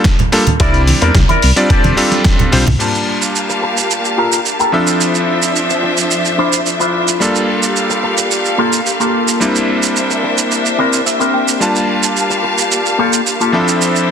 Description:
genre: nu-disco, nu disco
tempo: 109 BPM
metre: 4/4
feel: straight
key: G dorian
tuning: A4 = 440 Hz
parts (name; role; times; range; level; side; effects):
- electric guitar with an envelope filter; riff; 0.0-14.1 s; Bb3 to G5; -17 LUFS; left 2 dB; wide subtle chorus, low-pass filter, digital delay
- dusty soul sampler-style drum kit; drums; 0.0-14.1 s; crash cymbal, hi-hat, shaker, snare drum, toms; -18 LUFS; right 3 dB; overdrive
- electronic kick drum; drums; 0.1-2.4 s; none; -13 LUFS; equal; overdrive
- congas; percussion; 0.1-2.8 s; none; -19 LUFS; right 3 dB; none
- bright electric grand piano; accompaniment; 0.3-14.1 s; F3 to A5; -17 LUFS; equal; digital delay
- chorused synth bass; bass; 0.6-2.8 s; F1 to E2; -13 LUFS; equal; none
- clear studio string section; sustained chords; 2.8-14.1 s; F3 to A5; -17 LUFS; left 1 dB; sidechain pumping
room: moderate plate reverb, RT60 1.2 s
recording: dense, heavily limited modern master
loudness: -11 LUFS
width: side -7 dB against mid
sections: 0.0-2.8 A section; 2.8-14.1 B section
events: filter sweep on clean electric guitar 0.0-2.8; drum fill 2.5; clean electric guitar fill 10.5-11.6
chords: 0.0 Gm9; 0.6 C9; 1.7 F69; 2.8 Gm9; 4.7 Dm9; 7.2 Gm9; 9.4 C9; 11.6 Gm9; 13.5 Dm9

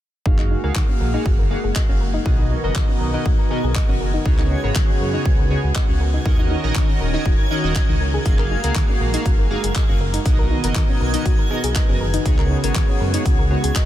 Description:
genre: progressive house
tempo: 120 BPM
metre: 4/4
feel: straight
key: unclear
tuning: A4 = 440 Hz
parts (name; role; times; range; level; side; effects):
- lush unison pad; sustained chords; 0.3-13.9 s; Db3 to A#4; -28 LUFS; equal; chorus, sidechain pumping
- soft round pluck; arpeggios; 0.3-13.8 s; Eb3 to Eb5; -28 LUFS; left 2 dB; chorus, sidechain pumping, ping-pong delay
- chorused polysynth; stabs; 0.3-13.6 s; B2 to F5; -25 LUFS; right 2 dB; sidechain pumping, ping-pong delay
- dark detuned saw bass; bass; 0.3-13.7 s; Eb1 to Gb2; -22 LUFS; equal; sidechain pumping
- electronic kick drum; drums; 0.3-13.9 s; none; -18 LUFS; equal; none
- backwards swelling texture; texture; 1.9-13.9 s; Ab6; -33 LUFS; equal; built-in reverb, sidechain pumping
- deep house drum kit; drums; 0.4-13.9 s; handclaps, hi-hat; -30 LUFS; left 1 dB; overdrive
room: light reverb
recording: none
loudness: -16 LUFS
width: side -12 dB against mid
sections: 0.3-13.9 A section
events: filter sweep on synth pluck 0.3-13.9; filter sweep on analog synth pad 0.3-13.9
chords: 0.3 Gbmaj9; 2.3 Bmaj7; 4.3 Db7sus4; 6.3 Ebm7; 8.3 Gbmaj9; 10.3 Bmaj7; 12.3 Db7sus4

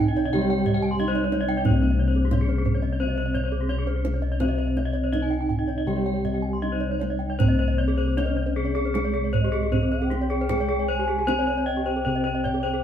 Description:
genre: Balinese gamelan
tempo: 77-91 BPM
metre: 4/4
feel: straight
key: C pelog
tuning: A4 = 440 Hz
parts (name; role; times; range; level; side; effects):
- gamelan-type bronze metallophone; melody; 0.0-12.8 s; Ab3 to G4; -29 LUFS; right 3 dB; none
- gamelan-type bronze metallophone; accompaniment; 0.0-7.4 s; C3 to G3; -30 LUFS; equal; none
- gamelan-type bronze metallophone; arpeggios; 0.0-12.8 s; G4 to Ab5; -33 LUFS; right 4 dB; none
- gamelan-type bossed gongs; bass; 0.0-12.8 s; C2 to Ab4; -26 LUFS; left 2 dB; none
- kendang; percussion; 0.0-12.7 s; none; -28 LUFS; right 3 dB; none
- gamelan-type bronze metallophone; arpeggios; 0.1-12.7 s; G4 to C6; -30 LUFS; left 4 dB; none
- mellow hollow xiao; second line; 8.2-12.8 s; Db5+35c to Ab5; -31 LUFS; left 1 dB; none
room: wet stone room reverb, RT60 1.4 s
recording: band playing live in one room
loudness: -21 LUFS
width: side -9 dB against mid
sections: 0.0-7.4 A section; 7.4-12.8 B section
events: none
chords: none

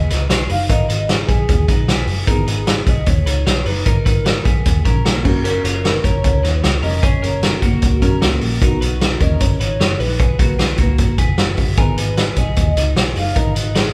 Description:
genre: jangly indie pop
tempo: 152 BPM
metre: 4/4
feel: straight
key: G# minor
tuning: A4 = 440 Hz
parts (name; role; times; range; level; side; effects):
- warbly nostalgic lead; melody; 0.0-13.9 s; F#4 to E#5; -27 LUFS; equal; chorus, digital delay
- dark upright piano; accompaniment; 0.0-13.9 s; B3 to B4; -28 LUFS; equal; none
- twelve-string electric guitar; arpeggios; 0.0-13.9 s; A#3 to C#5; -28 LUFS; equal; none
- vintage muted picked electric bass; bass; 0.0-13.9 s; E#1 to F#2; -22 LUFS; equal; none
- vintage drum kit; drums; 0.1-13.8 s; crash cymbal, hi-hat, kick drum, snare drum; -19 LUFS; equal; none
- glockenspiel with rubber mallets; second line; 11.8-13.9 s; G#5; -36 LUFS; equal; none
room: moderate large studio reverb, RT60 1.1 s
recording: band playing live in one room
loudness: -16 LUFS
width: mono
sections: 0.0-13.9 A section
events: none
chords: 0.0 G#madd9; 5.2 F#; 11.8 G#madd9

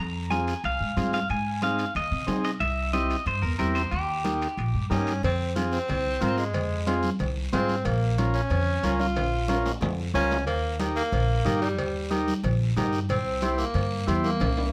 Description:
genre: latin, cumbia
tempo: 183 BPM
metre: 4/4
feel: straight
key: F minor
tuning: A4 = 439 Hz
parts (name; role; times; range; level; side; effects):
- clean electric guitar; melody; 0.0-4.9 s; G4 to Bb5; -31 LUFS; equal; spring reverb
- upright bass; bass; 0.0-14.7 s; Bb1 to C3; -30 LUFS; equal; none
- combo organ; accompaniment; 0.3-14.3 s; Bb3 to C5; -31 LUFS; equal; none
- congas; percussion; 0.3-14.6 s; none; -35 LUFS; equal; none
- guiro; percussion; 0.3-14.7 s; none; -45 LUFS; equal; none
- timbales and cowbell; percussion; 0.3-14.6 s; none; -38 LUFS; equal; none
- breathy tenor saxophone; second line; 4.9-14.7 s; G3 to F4; -31 LUFS; equal; none
room: light reverb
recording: none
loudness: -26 LUFS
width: mono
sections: 0.0-5.2 A section; 5.2-14.7 B section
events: tenor saxophone solo 5.2-14.7; drum fill 9.2-10.5, 14.4-14.7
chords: 0.0 Fm; 1.3 Ab; 2.6 C; 3.9 Eb; 5.2 Fm; 7.9 Bbm; 10.5 Eb; 13.1 C7

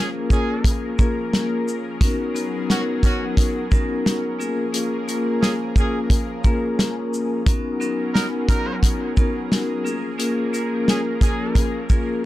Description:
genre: hip hop, boom-bap hip-hop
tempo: 88 BPM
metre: 4/4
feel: swing 58% on 16ths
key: unclear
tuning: A4 = 440 Hz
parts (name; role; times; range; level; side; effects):
- vibraphone with medium mallets; accompaniment; 0.0-12.3 s; A#3 to A#4; -23 LUFS; left 2 dB; cassette tape, high-pass filter, low-pass filter
- lush unison pad; sustained chords; 0.0-12.3 s; E#3 to A#4; -31 LUFS; right 1 dB; chorus, phaser, high-pass filter, low-pass filter
- dark trumpet section; stabs; 0.0-11.7 s; F#3 to A#4; -30 LUFS; right 2 dB; high-pass filter, low-pass filter, ping-pong delay
- warm soul drum kit; drums; 0.3-12.1 s; hi-hat, kick drum, shaker, snare drum; -19 LUFS; equal; none
room: light reverb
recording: none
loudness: -19 LUFS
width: side -15 dB against mid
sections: 0.0-12.3 A section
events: none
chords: 0.0 A#m7; 2.0 G#m11; 4.4 A#m7; 7.5 G#m11; 9.8 A#m7

